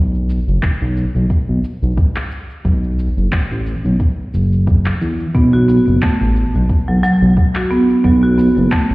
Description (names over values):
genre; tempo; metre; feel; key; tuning
organic downtempo; 89 BPM; 4/4; swing 55% on 16ths; unclear; A4 = 440 Hz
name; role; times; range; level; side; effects
smooth synth bass; bass; 0.0-8.9 s; F#1 to E2; -15 LUFS; equal; none
electronic cabasa and handclaps; drums; 0.1-8.9 s; none; -26 LUFS; equal; studio reverb
electronic kick drum; drums; 0.6-8.9 s; none; -15 LUFS; equal; studio reverb
marimba with hard mallets; arpeggios; 5.3-8.8 s; F#3 to F#4; -13 LUFS; right 1 dB; ping-pong delay
room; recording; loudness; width
light reverb; heard muffled through a wall, stone room reverb, EQ; -13 LUFS; side -21 dB against mid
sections
0.0-8.9 A section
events
none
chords
0.0 N.C.; 2.6 Asus2; 5.3 B5